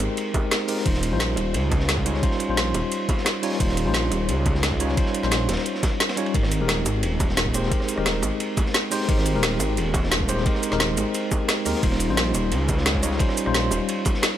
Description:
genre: liquid drum and bass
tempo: 175 BPM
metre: 4/4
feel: straight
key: Ab major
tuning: A4 = 440 Hz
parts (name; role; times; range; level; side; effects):
- tine electric piano; accompaniment; 0.0-14.4 s; G3 to Db5; -26 LUFS; equal; overdrive, auto-pan, low-pass filter, tape echo
- swelling detuned saw bass; bass; 0.0-13.8 s; Eb1 to Eb2; -25 LUFS; equal; none
- crunchy breakbeat drum kit; drums; 0.0-14.3 s; hi-hat, ride cymbal, snare drum; -31 LUFS; equal; high-pass filter on cymbals, small room reverb, high-pass filter on hats, high-pass filter on snare, high-pass filter on room
- garage drum kit; drums; 0.0-14.3 s; hi-hat, rim click, shaker, snare drum; -26 LUFS; equal; overdrive, small room reverb
- bongos; percussion; 0.0-14.1 s; none; -35 LUFS; right 2 dB; none
- electronic kick drum; drums; 0.3-14.1 s; none; -24 LUFS; equal; overdrive, small room reverb
room: light reverb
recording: none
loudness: -20 LUFS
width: side -11 dB against mid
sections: 0.0-14.4 A section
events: none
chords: 0.0 Abmaj9; 0.9 Eb13; 6.3 Abmaj9; 11.8 Eb13

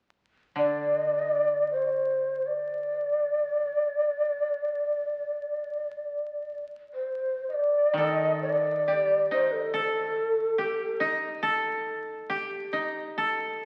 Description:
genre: japanese traditional, Japanese chamber music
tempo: free time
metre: none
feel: none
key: D in sen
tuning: A4 = 441 Hz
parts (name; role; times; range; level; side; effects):
- breathy mellow long shakuhachi; melody; 0.6-11.0 s; A4 to Eb5; -28 LUFS; equal; none
- koto; accompaniment; 0.6-3.8, 7.9-10.6 s; D3 to Eb3; -39 LUFS; equal; none
- koto; second line; 8.0-13.7 s; Eb4 to A4; -31 LUFS; equal; none
room: wet concert hall reverb, RT60 2.0 s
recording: very old 78 rpm record, vinyl crackle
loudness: -28 LUFS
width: mono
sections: 0.0-8.0 A section; 8.0-13.7 B section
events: none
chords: none

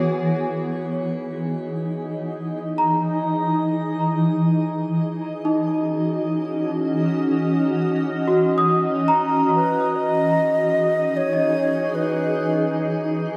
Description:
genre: ambient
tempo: free time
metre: none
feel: none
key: unclear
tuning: A4 = 441 Hz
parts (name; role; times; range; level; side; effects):
- granular cloud pad; sustained chords; 0.0-13.4 s; E3 to D#5; -24 LUFS; equal; built-in reverb, shimmer reverb
- large celesta; arpeggios; 0.0-13.4 s; D#4 to D#6; -27 LUFS; equal; shimmer reverb, diffuse ambient delay
- hollow alto flute; melody; 9.6-12.8 s; B4 to D#5; -25 LUFS; equal; shimmer reverb, diffuse ambient delay
room: wet lush hall reverb, RT60 2.8 s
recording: none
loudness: -22 LUFS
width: mono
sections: 0.0-13.4 A section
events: none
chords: 0.0 Emaj9; 4.7 F#5/E

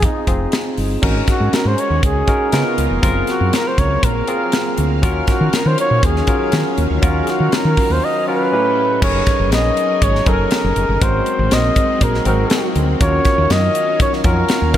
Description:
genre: polished 1980s jazz-funk pop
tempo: 120 BPM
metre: 4/4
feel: straight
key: Eb dorian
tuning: A4 = 440 Hz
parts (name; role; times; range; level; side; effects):
- breathy flugelhorn; melody; 0.0-14.8 s; Eb4 to Eb5; -19 LUFS; equal; analog delay
- barky tine electric piano; accompaniment; 0.0-14.8 s; A2 to B4; -21 LUFS; left 1 dB; overdrive, lush chorus
- woody fretless electric bass; bass; 0.0-14.8 s; F1 to Eb3; -18 LUFS; equal; none
- crisp fusion drum kit; drums; 0.0-14.8 s; crash cymbal, hi-hat, kick drum, snare drum; -19 LUFS; equal; none
- string machine, violins; sustained chords; 1.0-14.8 s; Db3 to Bb5; -24 LUFS; equal; ensemble chorus
room: moderate huge ambient reverb, RT60 4.2 s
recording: dreamy mix soaked in reverb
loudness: -14 LUFS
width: side -11 dB against mid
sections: 0.0-1.0 A section; 1.0-9.0 B section; 9.0-14.8 C section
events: none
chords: 0.0 Fm7; 1.0 Ab9sus4; 2.5 Db13; 3.0 Gbmaj9#11; 5.0 Ebm9; 8.5 A9; 9.0 Gb69; 11.0 Ab9; 13.0 Ebm9

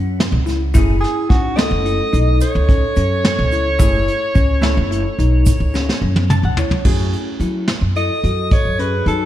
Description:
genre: progressive instrumental, band music in an uneven meter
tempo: 216 BPM (eighths)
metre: 11/8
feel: straight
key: F# dorian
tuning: A4 = 440 Hz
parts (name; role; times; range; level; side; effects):
- bell-like tine electric piano; arpeggios; 0.0-9.3 s; C#4 to F#4; -24 LUFS; left 6 dB; slapback echo, tape echo
- upright bass; bass; 0.0-9.3 s; F#1 to F#3; -18 LUFS; equal; none
- vintage brush drum kit; drums; 0.2-9.2 s; crash cymbal, hi-hat, kick drum, snare drum, toms; -17 LUFS; equal; none
- egg shaker; percussion; 0.5-6.7 s; none; -35 LUFS; right 10 dB; none
- vintage hollow-body jazz guitar; accompaniment; 0.8-7.6 s; A3 to A5; -26 LUFS; right 1 dB; slapback echo
- mellow soprano saxophone; melody; 1.0-9.3 s; F#4 to D#5; -21 LUFS; equal; slapback echo, tape echo
- vibraphone with medium mallets; second line; 1.0-9.3 s; D#4 to A4; -28 LUFS; right 2 dB; slapback echo, tape echo
room: light reverb, studio reverb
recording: none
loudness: -14 LUFS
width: side -12 dB against mid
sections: 0.0-6.9 A section; 6.9-9.3 B section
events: drum fill 5.7-6.9; hollow-body jazz guitar fill 6.0-6.9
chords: 0.0 F#m7

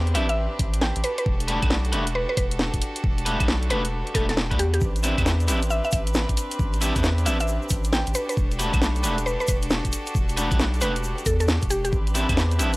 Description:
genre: UK garage, two-step garage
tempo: 135 BPM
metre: 4/4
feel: swing 64% on 16ths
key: A minor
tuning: A4 = 440 Hz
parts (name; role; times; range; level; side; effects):
- clear chamber violin section; sustained chords; 0.0-12.8 s; C4 to B4; -33 LUFS; equal; sidechain pumping
- soft dub sub bass; bass; 0.0-12.8 s; E1 to E2; -25 LUFS; equal; none
- mallet-like synth pluck; melody; 0.1-11.9 s; G4 to G5; -28 LUFS; equal; chorus
- electric guitar at the edge of break-up; stabs; 0.1-12.7 s; A3 to B4; -28 LUFS; equal; spring reverb, analog delay
- garage drum kit; drums; 0.1-12.8 s; claves, finger snaps, hi-hat, snare drum; -26 LUFS; equal; none
- electronic kick drum; drums; 0.6-12.4 s; none; -25 LUFS; equal; none
- tube shaker; percussion; 4.8-12.8 s; none; -36 LUFS; left 2 dB; none
room: little or no reverb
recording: dry, gritty hardware recording, vinyl crackle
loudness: -21 LUFS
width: side -21 dB against mid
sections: 0.0-12.8 A section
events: none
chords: 0.0 Am11; 1.0 Em11; 4.8 Am11; 8.1 Em11; 11.9 Am11

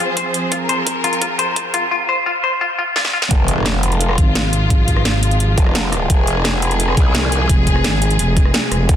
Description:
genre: dark technical drum and bass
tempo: 172 BPM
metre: 4/4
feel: straight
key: F minor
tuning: A4 = 439 Hz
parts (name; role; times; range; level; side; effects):
- rich studio string section; sustained chords; 0.0-9.0 s; C3 to C5; -21 LUFS; left 1 dB; sidechain pumping
- semi-hollow electric guitar; arpeggios; 0.0-3.2 s; F4 to C5; -18 LUFS; left 2 dB; sidechain pumping, low-pass filter, ping-pong delay
- drum and bass drum kit; drums; 0.2-9.0 s; hi-hat, rim click, snare drum; -20 LUFS; equal; none
- electronic kick drum; drums; 0.2-9.0 s; none; -15 LUFS; equal; overdrive, high-pass filter on kick
- growl bass; bass; 3.3-9.0 s; F1 to C2; -18 LUFS; equal; chorus, tube saturation
- impact; sound effects; 3.3-4.7 s; none; -24 LUFS; equal; none
- growling FM bass; bass; 4.2-8.9 s; F1 to Ab1; -17 LUFS; equal; none
room: light reverb, digital ambience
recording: dense, heavily limited modern master, high-pass filter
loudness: -14 LUFS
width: side -10 dB against mid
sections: 0.0-3.3 A section; 3.3-9.0 B section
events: build-up 0.0-3.3; drum fill 0.5-1.9, 3.0-3.3; drop 3.3-9.0; impact 3.3-4.7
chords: 0.0 Fm

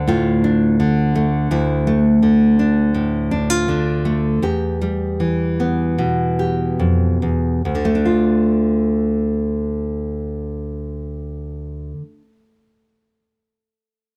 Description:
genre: folk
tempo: 69-84 BPM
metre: 4/4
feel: straight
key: D dorian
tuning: A4 = 442 Hz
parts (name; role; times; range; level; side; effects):
- nylon-string guitar; solo; 0.0-12.3 s; D2 to G4; -18 LUFS; equal; none
room: little or no reverb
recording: close, detailed microphones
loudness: -18 LUFS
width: mono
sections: 0.0-1.5 A section; 1.5-7.7 B section; 7.7-11.1 C section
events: slowing down 1.5-7.7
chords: 0.0 Dm; 1.5 Dsus2; 4.4 Em; 7.7 Dm

